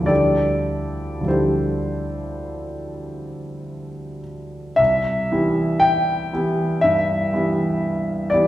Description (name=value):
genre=classical, impressionist solo piano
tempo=49-61 BPM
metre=4/4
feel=rubato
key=C major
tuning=A4 = 438 Hz
part: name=warm concert grand piano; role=solo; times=0.0-8.5 s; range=C2 to G5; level=-19 LUFS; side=equal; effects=none
room=wet recital hall reverb, RT60 1.5 s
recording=heard from further back in the room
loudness=-18 LUFS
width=side -14 dB against mid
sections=0.0-4.8 A section; 4.8-8.5 A section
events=none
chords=0.1 Dm11; 4.8 Cmaj7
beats=| 0.09 1.30 2.50 3.65 | 4.79 5.83 6.84 7.83